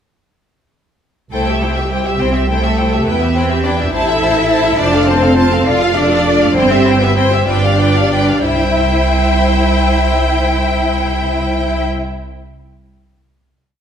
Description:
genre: quick classical-period movement for string orchestra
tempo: 61-70 BPM (dotted quarters)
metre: 6/8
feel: straight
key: C major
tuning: A4 = 440 Hz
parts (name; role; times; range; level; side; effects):
- rich studio violin section; melody; 1.3-11.8 s; D5 to A5; -19 LUFS; left 2 dB; none
- rich studio violin section; second line; 1.3-11.8 s; G4 to F5; -20 LUFS; left 3 dB; none
- clear studio viola section; accompaniment; 1.3-11.8 s; E4 to E5; -20 LUFS; left 1 dB; none
- dark studio double bass section; bass; 1.3-11.8 s; F1 to E2; -17 LUFS; right 2 dB; none
- warm studio cello section; bass; 1.3-11.8 s; G3 to F4; -17 LUFS; right 1 dB; none
room: wet recital hall reverb, RT60 1.4 s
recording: recorded in a church or concert hall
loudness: -11 LUFS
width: side -8 dB against mid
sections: 1.3-8.4 theme; 8.4-12.3 final chord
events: slowing down 3.9-8.4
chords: 1.3 C; 3.1 Em; 3.9 Am; 4.8 F; 5.7 Dm/F; 6.5 C/G; 7.5 G7; 8.4 C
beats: | 1.32 2.20 | 3.07 3.92 | 4.78 5.66 | 6.55 7.47 | 8.45 9.42 | 10.40 11.37

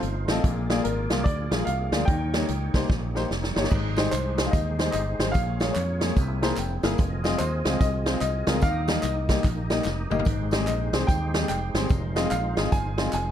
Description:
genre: uptempo gospel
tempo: 147 BPM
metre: 4/4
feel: swing 62% on 8ths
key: unclear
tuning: A4 = 442 Hz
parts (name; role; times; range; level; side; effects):
- warm baby grand piano; melody; 0.0-13.3 s; Bb4 to Ab5; -32 LUFS; left 1 dB; none
- percussive tonewheel organ; sustained chords; 0.0-13.3 s; Ab3 to F5; -35 LUFS; right 2 dB; slow rotary speaker, chorus vibrato
- fingered electric bass; bass; 0.0-13.3 s; F1 to F2; -28 LUFS; equal; none
- swinging big-band drum kit; drums; 0.0-13.2 s; crash cymbal, hi-hat, kick drum, snare drum, toms; -26 LUFS; right 1 dB; none
- clear concert grand piano; accompaniment; 0.3-13.1 s; Ab2 to Bb5; -29 LUFS; left 4 dB; none
- tambourine and handclaps; percussion; 3.7-13.2 s; none; -41 LUFS; right 1 dB; none
room: light reverb, small room ambience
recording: dark, warm production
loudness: -22 LUFS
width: side -10 dB against mid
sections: 0.0-13.3 A section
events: drum fill 2.9-3.7, 9.9-10.3; grand piano fill 6.2-7.0; tonewheel organ fill 9.7-10.3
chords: 0.4 Bb7; 2.1 Eb7; 3.7 Abmaj7; 5.4 Bbm7; 6.2 C7b13; 7.0 Fm7; 8.6 Eb; 10.3 Fm7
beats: 0.03 | 0.44 0.85 1.26 1.67 | 2.08 2.49 2.90 3.31 | 3.72 4.12 4.53 4.94 | 5.35 5.76 6.17 6.58 | 6.99 7.40 7.81 8.22 | 8.63 9.04 9.45 9.86 | 10.27 10.68 11.09 11.49 | 11.90 12.32 12.73 13.14

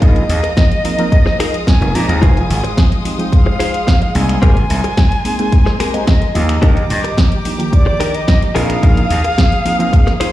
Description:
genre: nu-disco, nu disco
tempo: 109 BPM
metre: 4/4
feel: straight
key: unclear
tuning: A4 = 440 Hz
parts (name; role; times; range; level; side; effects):
- bright concert flute; melody; 0.0-10.3 s; D5 to Bb5; -21 LUFS; equal; vintage 12-bit sampler grit, ping-pong delay
- reed electric piano; accompaniment; 0.0-10.3 s; Eb3 to G5; -21 LUFS; equal; phaser, ping-pong delay
- rich studio string section; sustained chords; 0.0-10.3 s; Ab3 to Eb6; -26 LUFS; left 2 dB; sidechain pumping
- direct-recorded clean electric guitar; riff; 0.0-10.3 s; C4 to C5; -22 LUFS; left 2 dB; wide subtle chorus, vintage 12-bit sampler grit, ping-pong delay
- gritty slap bass; bass; 0.0-9.2 s; F1 to Bb2; -16 LUFS; equal; overdrive
- electronic kick drum; drums; 0.0-10.0 s; none; -11 LUFS; equal; studio reverb
- house drum kit; drums; 0.0-10.3 s; finger snaps, hi-hat, snare drum; -21 LUFS; equal; studio reverb
room: little or no reverb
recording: played on a big sound system in a bare room, large studio reverb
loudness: -11 LUFS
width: side -14 dB against mid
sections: 0.0-10.3 A section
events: none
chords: 0.0 Bb7sus4; 2.2 Fm7; 4.4 Abmaj9; 6.6 Ebmaj7; 8.6 Bb7sus4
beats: | 0.02 0.57 1.12 1.67 | 2.22 2.77 3.32 3.87 | 4.42 4.97 5.53 6.08 | 6.63 7.18 7.73 8.28 | 8.83 9.38 9.93

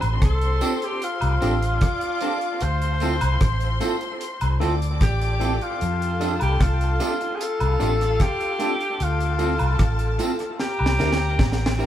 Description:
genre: lovers rock reggae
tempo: 75 BPM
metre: 4/4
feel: straight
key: F major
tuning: A4 = 439 Hz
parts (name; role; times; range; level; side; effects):
- warm studio string section; second line; 0.0-11.9 s; F4 to D6; -33 LUFS; left 4 dB; none
- vintage muted fingered electric bass; bass; 0.0-11.9 s; A1 to F2; -23 LUFS; equal; none
- deep reggae drum kit; drums; 0.0-11.8 s; hi-hat, kick drum, rim click, snare drum; -24 LUFS; equal; none
- woodblock and tambourine; percussion; 0.0-11.9 s; none; -32 LUFS; right 1 dB; none
- warm tenor saxophone; melody; 0.2-11.8 s; F4 to C5; -26 LUFS; left 1 dB; dub echo
- tine electric piano; accompaniment; 0.6-11.9 s; C4 to Bb4; -32 LUFS; equal; overdrive, fast stereo tremolo, dub echo
- electric guitar through a small old amp; stabs; 0.6-11.9 s; F3 to Bb4; -31 LUFS; right 4 dB; dub echo
room: moderate studio ambience, RT60 0.4 s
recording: band playing live in one room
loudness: -20 LUFS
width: side -11 dB against mid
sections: 0.0-11.9 A section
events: drum fill 10.6-11.9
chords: 0.0 F6; 2.6 Dm7; 5.8 F6; 9.0 Dm7; 10.6 C7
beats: 0.22 1.02 1.81 | 2.61 3.41 4.21 5.01 | 5.80 6.60 7.40 8.20 | 8.99 9.79 10.59 11.39

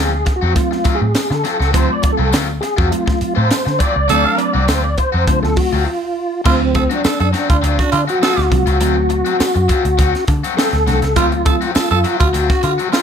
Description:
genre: funk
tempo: 102 BPM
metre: 4/4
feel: straight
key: D mixolydian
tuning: A4 = 436 Hz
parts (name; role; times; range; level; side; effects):
- tonewheel organ; melody; 0.0-13.0 s; C4 to E#5; -19 LUFS; equal; chorus vibrato, slow rotary speaker
- biting overdriven guitar; accompaniment; 0.0-13.0 s; F#3 to F#4; -23 LUFS; left 7 dB; none
- vintage muted picked electric bass; bass; 0.0-12.8 s; C2 to D3; -18 LUFS; equal; none
- crisp fusion drum kit; drums; 0.3-13.0 s; crash cymbal, hi-hat, kick drum, snare drum; -18 LUFS; equal; none
- mellow tine electric piano; stabs; 0.6-11.7 s; F#3 to F#4; -22 LUFS; right 1 dB; medium stereo tremolo
- tambourine; percussion; 1.2-13.0 s; none; -28 LUFS; left 4 dB; none
- raspy tenor saxophone; second line; 4.1-13.0 s; E#4 to A4; -20 LUFS; right 6 dB; none
room: light reverb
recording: none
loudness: -13 LUFS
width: side -7 dB against mid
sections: 0.0-6.5 A section; 6.5-13.0 B section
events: tonewheel organ solo 0.0-6.5; band accent 4.1-6.5; break 5.9-6.5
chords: 0.0 D7#9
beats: 0.56 1.15 | 1.74 2.33 2.92 3.51 | 4.10 4.69 5.28 5.87 | 6.45 7.04 7.63 8.22 | 8.81 9.40 9.99 10.57 | 11.16 11.75 12.34 12.93

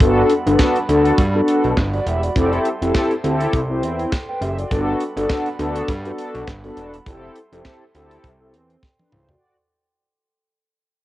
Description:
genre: early-eighties boogie funk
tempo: 102 BPM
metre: 4/4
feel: swing 56% on 16ths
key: G major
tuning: A4 = 440 Hz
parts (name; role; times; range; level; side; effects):
- mellow synth brass; accompaniment; 0.0-9.6 s; B3 to G5; -19 LUFS; left 1 dB; chorus, cassette tape
- glass harmonica; sustained chords; 0.0-9.4 s; G3 to C6; -32 LUFS; right 2 dB; cassette tape
- fat analog bass; bass; 0.0-9.4 s; E1 to G2; -22 LUFS; equal; none
- tight funk drum kit; drums; 0.0-9.4 s; handclaps, hi-hat, kick drum, snare drum, toms; -21 LUFS; equal; cassette tape
room: light reverb, small room reverb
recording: home recording on cassette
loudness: -16 LUFS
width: side -15 dB against mid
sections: 0.0-9.4 A section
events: fade-out 0.0-9.4; drum fill 8.8-9.4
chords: 0.0 Gmaj7; 2.4 Fmaj7; 3.2 D7sus4; 4.7 Gmaj7; 7.1 Fmaj7; 7.9 D7sus4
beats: | 0.00 0.59 1.18 1.77 | 2.36 2.95 3.53 4.12 | 4.71 5.30 5.89 6.47 | 7.06 7.65 8.24 8.83

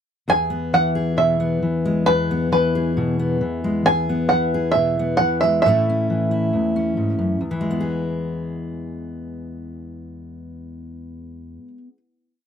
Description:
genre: indie folk with a building arrangement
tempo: 135 BPM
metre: 4/4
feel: straight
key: E major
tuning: A4 = 440 Hz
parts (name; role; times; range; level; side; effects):
- bluegrass banjo; melody; 0.3-6.9 s; B4 to G#5; -19 LUFS; right 2 dB; none
- fingerpicked steel-string acoustic guitar; accompaniment; 0.3-12.0 s; E2 to G#4; -22 LUFS; left 2 dB; none
room: light reverb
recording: dry, close 1970s-style studio recording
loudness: -18 LUFS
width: side -8 dB against mid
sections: 0.3-7.4 verse; 7.4-10.9 final chord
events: none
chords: 0.3 E; 5.6 A; 7.4 E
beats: | 0.29 0.73 1.18 1.62 | 2.07 2.52 2.96 3.41 | 3.86 4.30 4.75 5.19 | 5.64 6.08 6.52 6.96 | 7.40 7.84 8.28 8.72 | 9.15 9.59 10.03 10.46

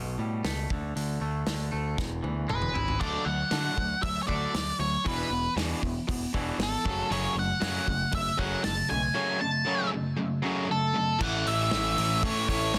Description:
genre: quiet-loud alternative rock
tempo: 117 BPM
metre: 4/4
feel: straight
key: unclear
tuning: A4 = 440 Hz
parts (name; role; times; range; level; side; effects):
- twangy electric guitar; arpeggios; 0.0-11.2 s; E2 to E4; -39 LUFS; equal; none
- growling picked electric bass; bass; 0.0-12.8 s; E1 to D3; -35 LUFS; equal; overdrive
- loose indie drum kit; drums; 0.4-12.8 s; crash cymbal, hi-hat, kick drum, snare drum, toms; -36 LUFS; equal; none
- octave-fuzz lead guitar; melody; 2.5-12.8 s; A4 to A5; -32 LUFS; equal; distortion
- biting overdriven guitar; riff; 3.0-12.8 s; A2 to E4; -37 LUFS; equal; none
- overdriven electric guitar; riff; 7.1-12.8 s; F#2 to A3; -34 LUFS; equal; none
room: studio reverb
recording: dense, heavily limited modern master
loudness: -29 LUFS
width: mono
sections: 0.0-3.0 A section; 3.0-11.2 B section; 11.2-12.8 C section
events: drum fill 2.0-3.0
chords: 0.0 Gadd9/B; 0.7 D5; 2.0 E; 3.0 D; 5.1 E7(no3); 6.8 F#m; 11.2 A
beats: 0.44 | 0.95 1.47 1.98 2.49 | 3.00 3.52 4.03 4.54 | 5.05 5.57 6.08 6.59 | 7.10 7.62 8.13 8.64 | 9.15 9.66 10.17 10.68 | 11.20 11.71 12.22 12.73

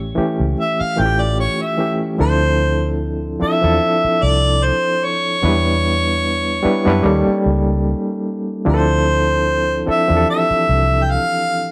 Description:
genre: lush 1970s-style soul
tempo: 74 BPM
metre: 4/4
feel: swing 54% on 16ths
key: D minor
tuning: A4 = 440 Hz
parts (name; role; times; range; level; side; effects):
- overdriven reed electric piano; accompaniment; 0.0-11.7 s; E3 to B4; -22 LUFS; equal; fast tremolo
- vintage muted fingered electric bass; bass; 0.0-11.2 s; A1 to F#2; -21 LUFS; equal; none
- mellow harmonica; melody; 0.6-11.7 s; C5 to G5; -20 LUFS; equal; none
room: light reverb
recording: none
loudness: -17 LUFS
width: mono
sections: 0.0-2.2 A section; 2.2-11.7 B section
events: harmonica solo 0.0-2.2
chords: 0.0 A7; 2.2 Dm9; 5.4 Em7; 7.0 Eb7#11; 8.7 Dm9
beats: 0.57 1.38 | 2.19 3.00 3.81 4.62 | 5.43 6.24 7.05 7.85 | 8.66 9.47 10.28 11.08

